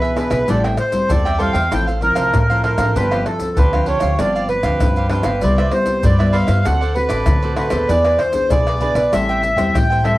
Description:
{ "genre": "samba and choro", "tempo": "97 BPM", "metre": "4/4", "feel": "straight", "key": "unclear", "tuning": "A4 = 440 Hz", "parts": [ { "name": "accordion", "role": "melody", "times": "0.0-10.2 s", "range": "A4 to G5", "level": "-18 LUFS", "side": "right 1 dB", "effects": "none" }, { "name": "cavaquinho", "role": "accompaniment", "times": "0.0-10.2 s", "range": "D4 to G5", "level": "-24 LUFS", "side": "right 3 dB", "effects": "none" }, { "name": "nylon-string guitar", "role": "accompaniment", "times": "0.0-10.2 s", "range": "G2 to A4", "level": "-24 LUFS", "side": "left 2 dB", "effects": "none" }, { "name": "upright bass", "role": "bass", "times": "0.0-10.1 s", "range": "G1 to E3", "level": "-20 LUFS", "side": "equal", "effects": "none" }, { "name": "maracas, surdo, pandeiro and tamborim", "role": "percussion", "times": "0.0-10.2 s", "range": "none", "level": "-21 LUFS", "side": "left 1 dB", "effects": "none" } ], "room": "light reverb, studio ambience", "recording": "home recording on cassette", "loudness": "-14 LUFS", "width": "side -17 dB against mid", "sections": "0.0-10.2 A section", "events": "none", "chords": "0.5 Am7; 1.7 Fmaj7/A; 3.0 G7sus4; 5.4 Cmaj7; 6.7 D7; 7.9 E7; 9.1 Am7" }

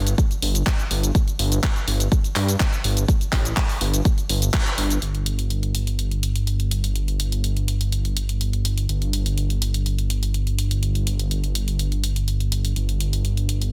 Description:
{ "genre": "progressive house", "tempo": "124 BPM", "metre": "4/4", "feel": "straight", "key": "unclear", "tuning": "A4 = 440 Hz", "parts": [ { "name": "dark detuned saw bass", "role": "bass", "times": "0.0-13.7 s", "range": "G1 to G2", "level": "-24 LUFS", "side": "equal", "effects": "sidechain pumping" }, { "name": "house drum kit", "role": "drums", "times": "0.1-13.7 s", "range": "handclaps, hi-hat, shaker", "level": "-30 LUFS", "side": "equal", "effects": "sidechain pumping on hats, soft clipping on snare, sidechain pumping on perc" }, { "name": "electronic kick drum", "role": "drums", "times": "0.2-4.6 s", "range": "none", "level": "-23 LUFS", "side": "equal", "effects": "none" } ], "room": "little or no reverb", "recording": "dense, heavily limited modern master", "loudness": "-22 LUFS", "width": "mono", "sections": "0.0-5.0 A section; 5.0-13.7 B section", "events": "band accent 4.5", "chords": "none" }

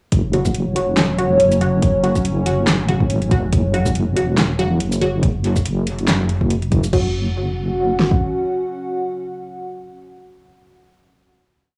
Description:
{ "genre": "deep dubstep", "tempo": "141 BPM", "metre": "4/4", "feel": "swing 56% on 16ths, half-time", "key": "unclear", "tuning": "A4 = 438 Hz", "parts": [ { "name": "dark analog pad", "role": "sustained chords", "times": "0.7-11.1 s", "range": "F#3 to F#5", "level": "-23 LUFS", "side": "equal", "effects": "chorus" }, { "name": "deep soft wobble bass", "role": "bass", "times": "0.1-8.2 s", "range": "E1 to G#1", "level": "-22 LUFS", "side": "equal", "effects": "chorus" }, { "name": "deep house drum kit", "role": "drums", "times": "0.1-8.2 s", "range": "kick drum, snare drum", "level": "-22 LUFS", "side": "equal", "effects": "overdrive, cassette tape" }, { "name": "deep house drum kit", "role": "drums", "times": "0.1-7.0 s", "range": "crash cymbal, handclaps, hi-hat, shaker, snare drum", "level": "-24 LUFS", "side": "equal", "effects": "overdrive, cassette tape" }, { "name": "filtered dub chord stab", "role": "stabs", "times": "0.3-11.8 s", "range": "C#3 to F#4", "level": "-25 LUFS", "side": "equal", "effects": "phaser, dub echo" } ], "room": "light reverb, digital ambience", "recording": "home recording on cassette, small room reverb", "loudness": "-18 LUFS", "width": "mono", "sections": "0.1-6.9 drop; 6.9-10.3 final chord", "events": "drop 0.1-6.9", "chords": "0.1 F#5" }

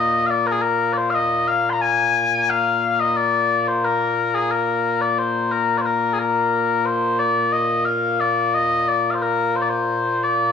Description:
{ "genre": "scottish traditional, Scottish pipe music", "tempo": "89 BPM", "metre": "2/4", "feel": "straight", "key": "Bb mixolydian", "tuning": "A4 = 439 Hz", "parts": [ { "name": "mellow small bagpipes", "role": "solo", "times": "0.0-10.5 s", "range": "Bb2 to C6", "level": "-17 LUFS", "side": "left 3 dB", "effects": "none" } ], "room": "moderate spring reverb, RT60 1.6 s, small room ambience", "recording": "home recording on cassette", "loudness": "-17 LUFS", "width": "side -7 dB against mid", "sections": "0.0-7.2 A section; 7.2-10.5 B section", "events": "none", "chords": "none" }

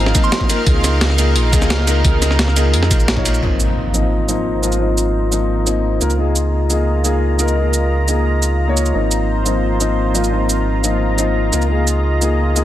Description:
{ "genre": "liquid drum and bass", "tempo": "174 BPM", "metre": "4/4", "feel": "straight", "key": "Ab major", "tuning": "A4 = 442 Hz", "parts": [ { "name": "dark grand piano", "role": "accompaniment", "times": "0.0-12.6 s", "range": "F3 to Db5", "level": "-19 LUFS", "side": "left 2 dB", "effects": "digital delay" }, { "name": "lush unison pad", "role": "sustained chords", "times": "0.0-12.6 s", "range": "C4 to Bb5", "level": "-24 LUFS", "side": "right 1 dB", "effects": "chorus, sidechain pumping" }, { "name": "sub bass with octave", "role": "bass", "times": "0.0-12.6 s", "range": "Ab1 to F2", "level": "-17 LUFS", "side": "equal", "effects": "none" }, { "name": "breakbeat sampler-style drum kit", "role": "drums", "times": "0.1-12.6 s", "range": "hi-hat, ride cymbal, shaker, snare drum", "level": "-20 LUFS", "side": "right 1 dB", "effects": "none" }, { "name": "electronic kick drum", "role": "drums", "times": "0.1-3.2 s", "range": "none", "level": "-16 LUFS", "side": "equal", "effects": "overdrive" }, { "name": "impact", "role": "sound effects", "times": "3.4-4.8 s", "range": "none", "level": "-22 LUFS", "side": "equal", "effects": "none" } ], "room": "light reverb", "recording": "dense, heavily limited modern master", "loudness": "-14 LUFS", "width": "side -13 dB against mid", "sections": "0.0-3.4 A section; 3.4-12.6 B section", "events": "drop 0.0-3.4; impact 3.4-4.8; filter sweep on analog synth pad 3.4-12.6", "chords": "0.5 Db69; 3.4 Ab69; 6.0 Db69; 8.9 Ab69; 11.5 Db69" }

